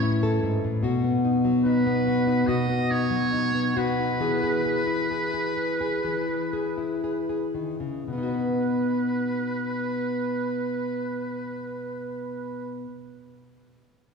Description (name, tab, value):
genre	folk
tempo	55-74 BPM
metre	4/4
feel	straight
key	B mixolydian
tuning	A4 = 439 Hz
part	trumpet with metal mute	melody	0.0-12.8 s	B4 to D#5	-30 LUFS	right 3 dB	none
part	nylon-string guitar	accompaniment	0.0-13.1 s	G#2 to B4	-25 LUFS	left 1 dB	none
room	wet concert hall reverb, RT60 2.2 s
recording	recorded in a church or concert hall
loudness	-23 LUFS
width	side -5 dB against mid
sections	0.8-8.1 A section; 8.1-12.4 B section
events	slowing down 0.8-8.1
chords	0.0 A; 0.8 B; 4.2 Eadd9; 8.1 B